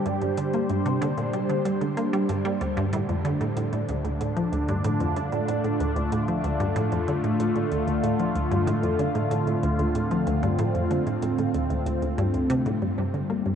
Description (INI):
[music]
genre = ambient, sequencer-driven space music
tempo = 94 BPM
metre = 4/4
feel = straight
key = unclear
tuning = A4 = 440 Hz
[part]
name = phased analog pad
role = sustained chords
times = 0.0-13.6 s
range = D3 to C5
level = -26 LUFS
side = equal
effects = phaser, chorus, shimmer reverb
[part]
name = resonant blip pluck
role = riff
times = 0.1-13.5 s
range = D2 to Bb3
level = -26 LUFS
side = right 1 dB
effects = chorus, analog delay
[part]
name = soft vintage rhythm box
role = percussion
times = 0.1-13.6 s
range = hi-hat, toms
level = -44 LUFS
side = right 1 dB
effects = overdrive, analog delay
[sound]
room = wet huge ambient reverb, RT60 8.9 s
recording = worn, warbling old tape, cassette tape, warbly pitch drift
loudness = -23 LUFS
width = side -8 dB against mid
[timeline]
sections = 0.0-12.8 A section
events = none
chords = 0.0 G5; 2.6 Dm; 12.8 G5